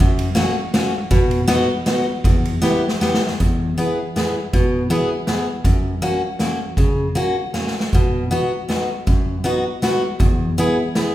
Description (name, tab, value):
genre	alpine folk, alpine dance band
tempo	160 BPM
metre	3/4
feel	swing 54% on 8ths, rubato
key	E harmonic minor, E major from 3.4 s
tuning	A4 = 441 Hz
part	picked steel-string acoustic guitar	accompaniment	0.0-11.1 s	E2 to G#4	-19 LUFS	equal	none
part	street-band drum kit	drums	0.2-11.1 s	hi-hat, kick drum, ride cymbal, snare drum	-19 LUFS	equal	none
room	wet recital hall reverb, RT60 1.4 s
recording	heard from further back in the room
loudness	-16 LUFS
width	side -14 dB against mid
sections	0.0-3.4 A section; 3.4-11.1 B section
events	drum fill 2.6-3.4, 7.5-7.9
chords	0.0 F#; 1.1 B; 2.2 Em; 3.4 E; 5.7 F#; 7.9 B; 10.2 E